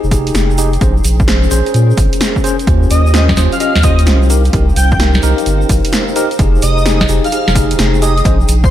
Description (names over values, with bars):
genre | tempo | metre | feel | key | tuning
UK garage, two-step garage | 129 BPM | 4/4 | swing 66% on 16ths | F minor | A4 = 440 Hz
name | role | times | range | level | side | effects
tine electric piano | stabs | 0.0-8.4 s | Db4 to Eb5 | -18 LUFS | left 1 dB | medium stereo tremolo, ping-pong delay
saturated sub bass | bass | 0.0-8.7 s | F1 to Bb2 | -12 LUFS | equal | none
tube shaker | percussion | 0.0-8.7 s | none | -26 LUFS | right 3 dB | none
granular cloud pad | texture | 0.0-8.7 s | Db4 to Bb5 | -23 LUFS | equal | built-in reverb, lush chorus, sidechain pumping
electronic kick drum | drums | 0.1-8.7 s | none | -15 LUFS | equal | overdrive
punchy analog drum machine | drums | 0.1-8.6 s | hi-hat, snare drum | -18 LUFS | equal | overdrive
airy dreamy lead | melody | 2.9-8.7 s | C5 to G5 | -19 LUFS | equal | chorus, cassette tape, ping-pong delay
room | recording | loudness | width
little or no reverb | none | -9 LUFS | side -12 dB against mid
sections
0.0-8.7 A section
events
none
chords
0.0 Fm9; 0.8 Bbm7; 2.7 Eb13; 4.3 Cm7; 6.4 Fm9